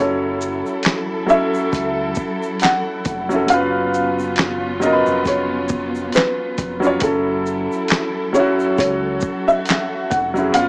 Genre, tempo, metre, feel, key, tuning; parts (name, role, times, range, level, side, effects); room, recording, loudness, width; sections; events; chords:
lo-fi hip hop; 68 BPM; 4/4; swing 57% on 16ths; A4 = 445 Hz
felt-muted upright piano; melody; 0.0-10.7 s; A4 to F#5; -23 LUFS; equal; low-pass filter
warm upright piano; accompaniment; 0.0-10.7 s; F#3 to C#5; -23 LUFS; equal; low-pass filter
warm studio string section; sustained chords; 0.0-10.7 s; F#3 to A4; -30 LUFS; equal; low-pass filter
deep dub fingered electric bass; bass; 0.0-10.7 s; E#1 to C#2; -33 LUFS; equal
dusty soul sampler-style drum kit; drums; 0.4-10.7 s; handclaps, hi-hat, kick drum, shaker, snare drum; -22 LUFS; equal; overdrive
egg shaker; percussion; 0.4-10.7 s; -48 LUFS; equal
light reverb, small room ambience; cassette tape, small speaker sound; -19 LUFS; mono
0.0-10.7 A section
0.0 F#m7; 3.5 C#7; 7.0 F#m7